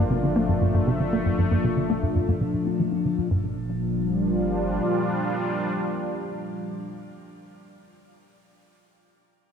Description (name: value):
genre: ambient, sequencer-driven space music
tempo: 117 BPM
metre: 4/4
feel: straight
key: G minor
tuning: A4 = 444 Hz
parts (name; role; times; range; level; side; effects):
- sweeping resonant pad; sustained chords; 0.0-8.1 s; Bb2 to F4; -25 LUFS; left 1 dB; chorus, shimmer reverb
- tight sequencer bass; riff; 0.0-3.5 s; G2 to D4; -24 LUFS; equal; wide subtle chorus, cassette tape, analog delay
- round analog bass; bass; 0.0-4.8 s; G1; -38 LUFS; equal; none
room: wet plate reverb, RT60 2.8 s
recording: echo-heavy mix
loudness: -22 LUFS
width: side -7 dB against mid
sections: 0.0-3.3 A section; 3.3-7.4 B section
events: fade-out on analog synth bass 0.0-3.3; filter sweep on analog synth bass 0.0-3.3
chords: 0.0 Gm7